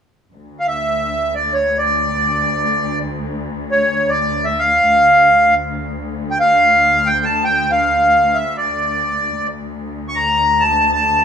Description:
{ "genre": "arabic", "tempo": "free time", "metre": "none", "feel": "none", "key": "D maqam nahawand", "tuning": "A4 = 440 Hz", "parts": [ { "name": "warm symphonic cello section", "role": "drone", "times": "0.3-11.2 s", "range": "D2", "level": "-24 LUFS", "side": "left 2 dB", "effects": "none" }, { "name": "accordion", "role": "melody", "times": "0.6-11.2 s", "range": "C#5 to C#6", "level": "-13 LUFS", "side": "equal", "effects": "none" } ], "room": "moderate recital hall reverb, RT60 1.6 s", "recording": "minimal, uncompressed stereo recording", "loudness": "-13 LUFS", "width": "side -7 dB against mid", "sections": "0.3-11.2 A section", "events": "none", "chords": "none" }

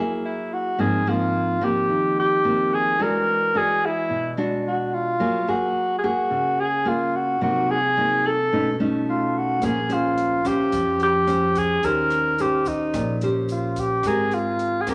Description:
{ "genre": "bossa nova", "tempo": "109 BPM", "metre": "4/4", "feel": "straight", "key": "unclear", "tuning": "A4 = 438 Hz", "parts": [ { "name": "nylon-string guitar", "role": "accompaniment", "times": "0.0-14.9 s", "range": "Ab2 to C5", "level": "-27 LUFS", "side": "equal", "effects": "none" }, { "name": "breathy alto saxophone", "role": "melody", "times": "0.2-14.9 s", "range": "Eb4 to Bb4", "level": "-24 LUFS", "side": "equal", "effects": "none" }, { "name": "upright bass", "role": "bass", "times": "9.6-14.9 s", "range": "Ab1 to F2", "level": "-34 LUFS", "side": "equal", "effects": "none" }, { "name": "compact cocktail drum kit", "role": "drums", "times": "9.6-14.9 s", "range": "hi-hat, kick drum, rim click", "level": "-41 LUFS", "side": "equal", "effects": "none" }, { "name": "egg shaker", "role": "percussion", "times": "9.6-14.9 s", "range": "none", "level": "-52 LUFS", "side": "equal", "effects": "none" } ], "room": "moderate large studio reverb, RT60 1.4 s", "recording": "none", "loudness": "-22 LUFS", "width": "mono", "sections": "0.0-14.9 A section", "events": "none", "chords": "0.0 Gb9; 0.8 Ab69; 3.0 E9; 5.2 Gbmaj9; 7.4 Cm7b5; 8.5 B9; 9.6 Bbm9; 11.8 Eb6; 14.0 Abmaj9" }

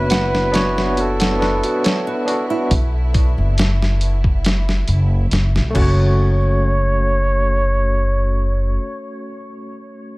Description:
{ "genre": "trip hop", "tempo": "69 BPM", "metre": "4/4", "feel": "straight", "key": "F# minor", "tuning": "A4 = 440 Hz", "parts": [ { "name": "trumpet with bucket mute", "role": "melody", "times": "0.0-9.3 s", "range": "A4 to C#5", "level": "-24 LUFS", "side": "equal", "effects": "tape echo" }, { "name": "overdriven tine electric piano", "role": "accompaniment", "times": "0.0-10.2 s", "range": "A3 to C#5", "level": "-24 LUFS", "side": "equal", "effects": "tremolo, tape echo" }, { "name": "warm chamber violin section", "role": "sustained chords", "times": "0.0-5.8 s", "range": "E4", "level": "-32 LUFS", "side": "left 1 dB", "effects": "none" }, { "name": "upright bass", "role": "bass", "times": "0.0-8.8 s", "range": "F#1 to B1", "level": "-17 LUFS", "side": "equal", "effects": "none" }, { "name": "nylon-string guitar", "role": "arpeggios", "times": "0.1-6.6 s", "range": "E4 to F#5", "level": "-27 LUFS", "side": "right 3 dB", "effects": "digital delay" }, { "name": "dusty soul sampler-style drum kit", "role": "drums", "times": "0.1-5.9 s", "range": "crash cymbal, hi-hat, kick drum, snare drum", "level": "-19 LUFS", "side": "equal", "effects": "studio reverb" } ], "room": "small room reverb", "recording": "none", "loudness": "-15 LUFS", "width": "side -22 dB against mid", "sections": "0.0-6.2 A section; 6.2-9.7 B section", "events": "none", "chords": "0.0 Bmadd9; 5.8 F#m" }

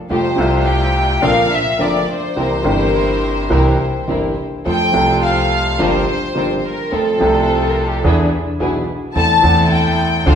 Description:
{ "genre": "tango", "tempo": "106 BPM", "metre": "4/4", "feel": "rubato", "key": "F major", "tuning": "A4 = 440 Hz", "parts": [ { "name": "warm studio violin section", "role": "second line", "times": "0.1-10.4 s", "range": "G4 to A5", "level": "-18 LUFS", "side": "left 2 dB", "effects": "none" }, { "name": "clear upright piano", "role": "accompaniment", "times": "0.1-10.4 s", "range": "F1 to A4", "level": "-17 LUFS", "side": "equal", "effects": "none" }, { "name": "dark chamber string section", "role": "stabs", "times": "0.1-10.4 s", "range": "A3 to C5", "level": "-23 LUFS", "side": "equal", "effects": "none" }, { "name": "upright bass", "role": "bass", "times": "0.1-10.4 s", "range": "F1 to F2", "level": "-20 LUFS", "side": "equal", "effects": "none" } ], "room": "wet recital hall reverb, RT60 1.7 s", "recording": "recorded in a church or concert hall", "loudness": "-13 LUFS", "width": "side -8 dB against mid", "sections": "0.0-10.4 A section", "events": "violin section solo 0.0-10.4", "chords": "0.1 Fadd9; 1.2 Bbadd9; 2.4 C7; 4.7 F; 5.8 C7sus4/G; 6.9 F; 8.0 E7; 9.2 Am/E" }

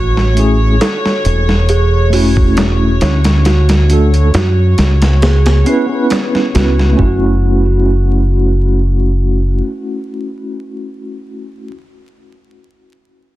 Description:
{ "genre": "trip hop", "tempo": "68 BPM", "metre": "4/4", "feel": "swing 54% on 16ths", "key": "F# minor", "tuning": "A4 = 437 Hz", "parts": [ { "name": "dark studio string section", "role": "sustained chords", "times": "0.0-7.0 s", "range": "C#5", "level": "-23 LUFS", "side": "left 3 dB", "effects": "none" }, { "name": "music box", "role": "arpeggios", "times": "0.0-7.4 s", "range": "C#4 to C#5", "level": "-20 LUFS", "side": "right 5 dB", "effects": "digital delay" }, { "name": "deep dub fingered electric bass", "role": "bass", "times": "0.0-9.6 s", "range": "E1 to F#2", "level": "-11 LUFS", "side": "equal", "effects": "none" }, { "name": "dusty soul sampler-style drum kit", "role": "drums", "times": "0.2-7.2 s", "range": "hi-hat, kick drum, snare drum", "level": "-16 LUFS", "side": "equal", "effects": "overdrive, studio reverb" }, { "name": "mellow tine electric piano", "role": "accompaniment", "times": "0.3-11.8 s", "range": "A3 to B4", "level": "-17 LUFS", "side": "equal", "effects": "medium stereo tremolo, vintage 12-bit sampler grit, tape echo" }, { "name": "darbuka", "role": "percussion", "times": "0.8-6.3 s", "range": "none", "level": "-27 LUFS", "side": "right 2 dB", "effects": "none" } ], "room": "studio reverb", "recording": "dense, heavily limited modern master, vinyl crackle", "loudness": "-10 LUFS", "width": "side -16 dB against mid", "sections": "0.0-7.0 A section; 7.0-10.5 B section", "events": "none", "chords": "0.0 Amaj7; 3.5 D; 5.2 C#m7; 7.0 F#m7" }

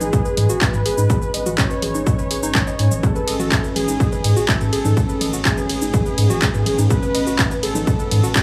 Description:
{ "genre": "melodic techno", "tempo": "124 BPM", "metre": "4/4", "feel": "straight", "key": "unclear", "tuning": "A4 = 436 Hz", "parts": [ { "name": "unison lead", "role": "melody", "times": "0.0-8.4 s", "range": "F#4 to C#5", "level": "-28 LUFS", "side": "equal", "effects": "sidechain pumping, tape echo" }, { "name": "deep dark ambient pad", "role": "sustained chords", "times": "0.0-8.4 s", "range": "G#3 to B4", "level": "-30 LUFS", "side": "equal", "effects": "chorus, built-in reverb, sidechain pumping" }, { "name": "woody wave-folded pluck", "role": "arpeggios", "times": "0.0-8.4 s", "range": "D#4 to G#5", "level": "-28 LUFS", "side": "equal", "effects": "chorus, cassette tape, sidechain pumping, tape echo" }, { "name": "round analog bass", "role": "bass", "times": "0.0-8.4 s", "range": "G#1 to G#2", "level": "-24 LUFS", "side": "equal", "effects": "sidechain pumping" }, { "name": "techno drum kit", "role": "drums", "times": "0.0-8.4 s", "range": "handclaps, hi-hat, ride cymbal, shaker, toms", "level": "-25 LUFS", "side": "equal", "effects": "overdrive, studio reverb" }, { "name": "electronic kick drum", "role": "drums", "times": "0.1-8.4 s", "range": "none", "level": "-22 LUFS", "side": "equal", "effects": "overdrive, studio reverb" } ], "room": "light reverb", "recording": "small room ambience", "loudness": "-18 LUFS", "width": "mono", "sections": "0.0-8.4 A section", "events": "none", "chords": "0.0 G#m; 3.0 Aadd9/G#" }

